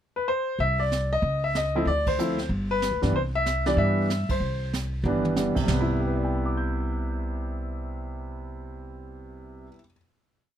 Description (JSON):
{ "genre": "jazz piano trio", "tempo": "189 BPM", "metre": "4/4", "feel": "swing 63% on 8ths", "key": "C major", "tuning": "A4 = 440 Hz", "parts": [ { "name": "clear baby grand piano", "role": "melody", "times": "0.2-10.0 s", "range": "C3 to G6", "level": "-26 LUFS", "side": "equal", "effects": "none" }, { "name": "upright bass", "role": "bass", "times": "0.6-9.7 s", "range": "G1 to G2", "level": "-28 LUFS", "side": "equal", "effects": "none" }, { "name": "jazz brush drum kit", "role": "drums", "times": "0.6-5.8 s", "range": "brushed snare drum, crash cymbal, hi-hat, kick drum, ride cymbal, snare drum, splash cymbal, toms", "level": "-31 LUFS", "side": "right 2 dB", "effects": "none" } ], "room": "little or no reverb", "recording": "close, detailed microphones", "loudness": "-23 LUFS", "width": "side -10 dB against mid", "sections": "0.0-0.6 pickup bar; 0.6-5.7 A section; 5.7-8.2 final chord", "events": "band accent 2.0, 4.3; drum fill 5.0-5.4", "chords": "0.0 N.C.; 0.6 Csus2; 1.2 Dbmadd9; 1.9 Dm9; 2.5 G; 3.1 Cmaj7" }